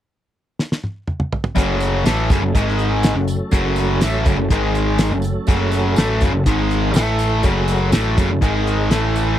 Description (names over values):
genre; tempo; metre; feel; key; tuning
classic rock; 122 BPM; 4/4; straight; F# minor; A4 = 440 Hz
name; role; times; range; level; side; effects
damped 70s drum kit; drums; 0.6-9.3 s; hi-hat, kick drum, snare drum, toms; -18 LUFS; equal; none
tonewheel organ; sustained chords; 1.6-9.4 s; F#3 to A4; -26 LUFS; equal; slow rotary speaker, overdrive, chorus vibrato
distorted electric guitar; riff; 1.6-9.4 s; F#2 to A3; -19 LUFS; equal; overdrive
overdriven picked electric bass; bass; 1.6-9.4 s; F#1 to A1; -21 LUFS; equal; none
tambourine; percussion; 1.6-9.3 s; none; -37 LUFS; right 8 dB; none
room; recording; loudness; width
little or no reverb; dry, close 1970s-style studio recording; -16 LUFS; side -11 dB against mid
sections
0.0-1.6 A section; 1.6-9.4 B section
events
drum fill 0.6-1.6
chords
0.0 N.C.; 1.6 F#m; 2.5 G#5; 3.2 F#m; 4.5 G#5; 5.1 F#m; 6.5 G#5; 7.0 A5; 7.4 F#m; 8.4 G#5; 8.9 A5